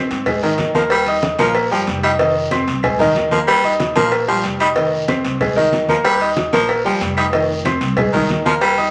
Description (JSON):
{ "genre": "latin, salsa", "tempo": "187 BPM", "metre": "4/4", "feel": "straight", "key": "F minor", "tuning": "A4 = 440 Hz", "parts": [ { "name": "clear concert grand piano", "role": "accompaniment", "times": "0.0-8.9 s", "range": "Eb3 to Eb6", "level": "-20 LUFS", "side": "equal", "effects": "none" }, { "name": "upright bass", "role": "bass", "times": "0.1-8.9 s", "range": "F1 to Ab2", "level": "-29 LUFS", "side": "equal", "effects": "none" }, { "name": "cowbell", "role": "percussion", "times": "0.1-8.9 s", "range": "none", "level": "-26 LUFS", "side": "equal", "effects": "none" }, { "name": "guiro", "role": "percussion", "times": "0.1-8.9 s", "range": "none", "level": "-34 LUFS", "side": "equal", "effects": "none" }, { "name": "claves", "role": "percussion", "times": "0.3-8.8 s", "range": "none", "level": "-31 LUFS", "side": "equal", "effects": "none" }, { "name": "congas", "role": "percussion", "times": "0.3-8.9 s", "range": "none", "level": "-27 LUFS", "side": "equal", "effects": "none" }, { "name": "raspy baritone saxophone", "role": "second line", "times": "0.4-8.9 s", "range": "Eb3 to G3", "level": "-21 LUFS", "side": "equal", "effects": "none" } ], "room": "wet large studio reverb, RT60 0.9 s", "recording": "none", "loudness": "-17 LUFS", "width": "mono", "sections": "0.0-8.9 A section", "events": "none", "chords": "0.0 Fm7 (rootless); 0.9 Ebadd9; 2.2 Fm7; 3.5 Ebadd9; 4.8 Fm7; 6.0 Ebadd9; 7.3 Fm7", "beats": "0.27 0.59 | 0.91 1.23 1.55 1.87 | 2.19 2.51 2.83 3.15 | 3.48 3.80 4.12 4.44 | 4.76 5.08 5.40 5.72 | 6.04 6.37 6.69 7.01 | 7.33 7.65 7.97 8.29 | 8.61" }